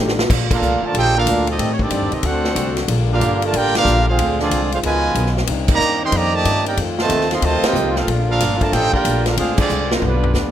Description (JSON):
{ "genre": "jazz, big band swing", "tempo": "185 BPM", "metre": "4/4", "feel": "swing 64% on 8ths", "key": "Bb major", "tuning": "A4 = 441 Hz", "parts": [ { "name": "vintage hollow-body jazz guitar", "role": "accompaniment", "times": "0.0-10.5 s", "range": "F2 to Bb4", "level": "-30 LUFS", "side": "left 8 dB", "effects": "none" }, { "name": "bright trombone section", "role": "sustained chords", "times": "0.0-10.5 s", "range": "D3 to G4", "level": "-25 LUFS", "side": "left 2 dB", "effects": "none" }, { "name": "upright bass", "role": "bass", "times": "0.0-10.5 s", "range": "G1 to A2", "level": "-21 LUFS", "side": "left 1 dB", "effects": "none" }, { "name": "swinging big-band drum kit", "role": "drums", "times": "0.1-10.4 s", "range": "crash cymbal, hi-hat, kick drum, ride cymbal, snare drum, toms", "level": "-22 LUFS", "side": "left 1 dB", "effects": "none" }, { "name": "bright trumpet section", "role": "melody", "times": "0.5-10.5 s", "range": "G3 to C6", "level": "-20 LUFS", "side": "right 2 dB", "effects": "none" }, { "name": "mellow trombone section", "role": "second line", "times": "0.5-10.5 s", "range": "Bb2 to G4", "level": "-24 LUFS", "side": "right 4 dB", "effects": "none" } ], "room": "small room reverb", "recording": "rough home demo mix", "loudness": "-15 LUFS", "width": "side -10 dB against mid", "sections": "0.3-10.5 A section", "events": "drum fill 0.0, 9.7-10.3; band accent 0.4, 3.7, 5.6, 7.6, 9.5", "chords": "0.3 Bbmaj7; 1.6 Am7b5; 2.2 D7; 2.9 Gm7; 4.2 Dm7b5; 4.8 Db13; 5.5 Cm9; 6.8 F7; 8.1 Bbmaj7; 9.4 Dm7b5" }